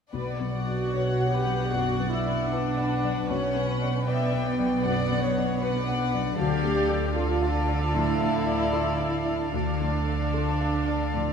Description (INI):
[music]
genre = cinematic, emotional film score for orchestra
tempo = 76 BPM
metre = 4/4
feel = rubato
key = unclear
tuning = A4 = 443 Hz
[part]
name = warm symphonic violin section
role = melody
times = 0.1-11.3 s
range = F5 to G5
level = -34 LUFS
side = left 6 dB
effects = none
[part]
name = warm symphonic violin section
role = second line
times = 0.1-11.3 s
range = A4 to E5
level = -32 LUFS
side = left 2 dB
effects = none
[part]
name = dark baby grand piano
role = accompaniment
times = 0.1-11.3 s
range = B1 to F#5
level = -33 LUFS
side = equal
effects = none
[part]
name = concert harp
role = arpeggios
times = 0.1-11.3 s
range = B2 to B4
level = -33 LUFS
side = left 5 dB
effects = none
[part]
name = clear studio cello section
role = bass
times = 0.1-11.3 s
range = B2 to D3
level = -32 LUFS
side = right 4 dB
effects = none
[part]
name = warm chamber double bass section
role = bass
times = 0.1-11.3 s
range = B1 to D2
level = -31 LUFS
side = right 2 dB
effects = none
[part]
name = dark studio viola section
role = accompaniment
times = 0.5-11.3 s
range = B3 to G4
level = -29 LUFS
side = right 1 dB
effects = none
[sound]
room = wet scoring stage reverb, RT60 1.9 s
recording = minimal, uncompressed stereo recording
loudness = -23 LUFS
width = side -6 dB against mid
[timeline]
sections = 0.1-11.3 A section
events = none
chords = 0.1 Bm; 6.4 Dm